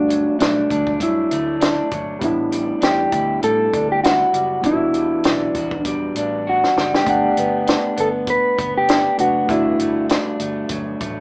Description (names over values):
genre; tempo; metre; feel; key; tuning
indie pop, bedroom pop; 99 BPM; 4/4; swing 55% on 16ths; E minor; A4 = 441 Hz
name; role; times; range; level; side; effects
mellow electric guitar; melody; 0.0-10.1 s; D4 to B4; -18 LUFS; equal; none
electric guitar through a small old amp; accompaniment; 0.0-11.2 s; G2 to F#4; -24 LUFS; equal; warbly pitch drift
reed electric piano; accompaniment; 0.0-11.2 s; G3 to F#5; -24 LUFS; equal; none
vintage muted fingered electric bass; bass; 0.0-11.2 s; E1 to A2; -31 LUFS; equal; none
compact cocktail drum kit; drums; 0.1-11.2 s; hi-hat, kick drum, snare drum; -20 LUFS; equal; none
room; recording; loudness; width
moderate small room ambience, RT60 0.5 s; band playing live in one room, small speaker sound; -16 LUFS; side -32 dB against mid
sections
0.0-7.1 A section; 7.1-11.2 B section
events
drum fill 6.5-7.1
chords
0.0 Em11/G; 2.2 A7sus4; 4.6 Em9; 7.1 Gmaj7; 9.5 Em11/G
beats
0.40 1.00 1.61 | 2.22 2.82 3.43 4.04 | 4.64 5.25 5.86 6.46 | 7.07 7.67 8.28 8.88 | 9.49 10.10 10.70